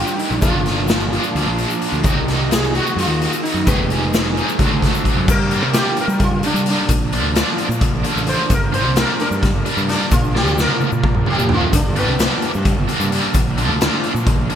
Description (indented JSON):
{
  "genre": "psychedelic rock",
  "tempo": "260 BPM (eighths)",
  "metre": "7/8",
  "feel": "straight",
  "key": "G minor from 5.3 s",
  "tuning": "A4 = 439 Hz",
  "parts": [
    { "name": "sitar", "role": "melody", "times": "0.0-13.3 s", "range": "Bb3 to C5", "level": "-24 LUFS", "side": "equal", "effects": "analog delay" },
    { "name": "cranked stack guitar", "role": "riff", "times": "0.0-14.6 s", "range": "Bb2 to C5", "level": "-21 LUFS", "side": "equal", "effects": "overdrive, harmonic tremolo, analog delay" },
    { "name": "fuzz picked electric bass", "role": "bass", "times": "0.0-14.5 s", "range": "F1 to G3", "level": "-21 LUFS", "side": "equal", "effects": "overdrive" },
    { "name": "egg shaker", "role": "percussion", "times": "0.1-14.3 s", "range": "none", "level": "-32 LUFS", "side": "left 28 dB", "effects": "none" },
    { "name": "raw garage drum kit", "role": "drums", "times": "0.2-14.6 s", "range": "crash cymbal, hi-hat, kick drum, snare drum, toms", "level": "-19 LUFS", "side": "equal", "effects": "none" }
  ],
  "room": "small room ambience",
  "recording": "echo-heavy mix",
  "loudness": "-15 LUFS",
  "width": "side -9 dB against mid",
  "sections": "0.0-5.3 A section; 5.3-14.6 B section",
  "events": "sitar solo 5.3-14.6; drum fill 10.4-11.7",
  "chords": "0.4 Bb; 2.0 Ebm; 3.7 Absus2; 4.6 D7; 5.3 Gm; 6.9 Bb; 8.5 Gm; 10.1 Bb; 11.7 Gm; 13.4 Bb"
}